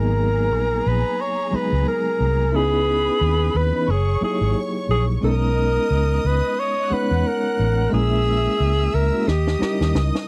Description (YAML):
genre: lush 1970s-style soul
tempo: 89 BPM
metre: 4/4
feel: swing 58% on 16ths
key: G# minor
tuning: A4 = 441 Hz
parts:
  - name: warm alto saxophone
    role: melody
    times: 0.0-10.0 s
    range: G4 to C#5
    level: -24 LUFS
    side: equal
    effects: none
  - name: warm studio violin section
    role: second line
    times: 0.0-10.3 s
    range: G#4 to F#6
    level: -34 LUFS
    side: equal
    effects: none
  - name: reed electric piano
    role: accompaniment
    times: 0.0-10.3 s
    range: E3 to C#5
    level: -28 LUFS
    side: equal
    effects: fast tremolo
  - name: vintage muted fingered electric bass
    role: bass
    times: 0.0-10.1 s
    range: F#1 to E2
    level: -23 LUFS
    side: equal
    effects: none
  - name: snare drum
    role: drums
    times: 9.3-10.3 s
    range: none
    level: -28 LUFS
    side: equal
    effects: none
room: small room ambience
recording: dry, close 1970s-style studio recording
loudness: -20 LUFS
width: mono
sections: 0.0-10.3 A section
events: drum fill 9.3-10.3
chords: 0.0 G#m9; 2.5 C#m9; 3.9 F#13; 5.2 Bmaj13; 7.9 A#m7b5; 9.3 D#7b9